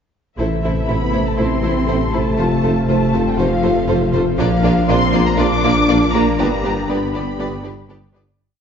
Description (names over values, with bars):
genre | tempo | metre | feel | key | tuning
cinematic, hybrid orchestral and electronic film score | 120 BPM | 4/4 | straight | A minor | A4 = 441 Hz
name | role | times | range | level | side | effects
warm symphonic violin section | melody | 0.4-7.9 s | E5 to D6 | -23 LUFS | left 4 dB | none
rich studio violin section | second line | 0.4-8.2 s | F4 to D5 | -25 LUFS | left 2 dB | none
rich symphonic viola section | accompaniment | 0.4-8.2 s | A3 to F4 | -23 LUFS | equal | none
brassy analog pad | sustained chords | 0.4-8.4 s | C3 to D5 | -24 LUFS | equal | chorus
mellow French horn section | sustained chords | 0.4-8.1 s | C3 to D4 | -25 LUFS | left 3 dB | none
dark tuba | bass | 0.4-8.2 s | F1 to Bb1 | -23 LUFS | right 2 dB | none
pure sine sub bass | bass | 0.4-8.4 s | F1 to Bb1 | -26 LUFS | equal | none
warm studio cello section | bass | 0.4-7.9 s | E3 to D4 | -22 LUFS | right 2 dB | none
warm symphonic double bass section | bass | 0.4-8.2 s | F1 to Bb1 | -26 LUFS | right 2 dB | none
room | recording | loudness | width
wet scoring stage reverb, RT60 1.9 s | heard from further back in the room, nothing above 7.6 kHz | -14 LUFS | side -7 dB against mid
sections
0.4-8.4 theme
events
fade-out 6.4-8.4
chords
0.4 Am; 2.4 F; 4.4 Bb; 6.4 G